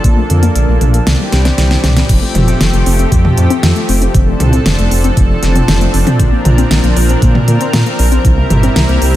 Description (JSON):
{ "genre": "synthwave", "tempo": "117 BPM", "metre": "4/4", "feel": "straight", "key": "F major", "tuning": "A4 = 439 Hz", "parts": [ { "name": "lush unison pad", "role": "sustained chords", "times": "0.0-9.2 s", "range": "E3 to Bb4", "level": "-17 LUFS", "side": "equal", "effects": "chorus, sidechain pumping" }, { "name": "warbly dusty pluck", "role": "arpeggios", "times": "0.0-9.1 s", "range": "D3 to C4", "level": "-19 LUFS", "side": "left 3 dB", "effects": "chorus, digital delay" }, { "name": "dark detuned saw bass", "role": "bass", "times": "0.0-9.2 s", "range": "F1 to Bb2", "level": "-12 LUFS", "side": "equal", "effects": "none" }, { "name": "electronic kick drum", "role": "drums", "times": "0.0-8.3 s", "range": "none", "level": "-11 LUFS", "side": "equal", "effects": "studio reverb" }, { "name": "pop drum kit", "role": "drums", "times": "0.0-9.1 s", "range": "crash cymbal, hi-hat, snare drum, toms", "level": "-15 LUFS", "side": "equal", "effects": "studio reverb" } ], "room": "light reverb", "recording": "dense, heavily limited modern master", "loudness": "-9 LUFS", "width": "side -14 dB against mid", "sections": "0.0-2.1 A section; 2.1-9.2 B section", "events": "drum fill 1.3-2.1", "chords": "0.0 Bbmaj7; 1.1 Cadd9; 2.1 Fadd9; 4.1 Dm7/F; 6.2 Bbadd9; 8.2 C7" }